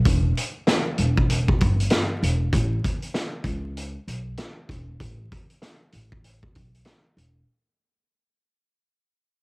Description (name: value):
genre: hip hop, boom-bap hip-hop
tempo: 97 BPM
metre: 4/4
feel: swing 63% on 16ths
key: unclear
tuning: A4 = 438 Hz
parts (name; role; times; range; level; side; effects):
- upright bass; bass; 0.1-7.4 s; E1 to C#2; -24 LUFS; equal; none
- vintage drum kit; drums; 0.1-7.4 s; hi-hat, kick drum, snare drum; -23 LUFS; equal; cassette tape
room: little or no reverb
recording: home recording on cassette, vinyl crackle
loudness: -21 LUFS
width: side -35 dB against mid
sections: 0.0-7.5 A section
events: fade-out 0.0-7.5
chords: none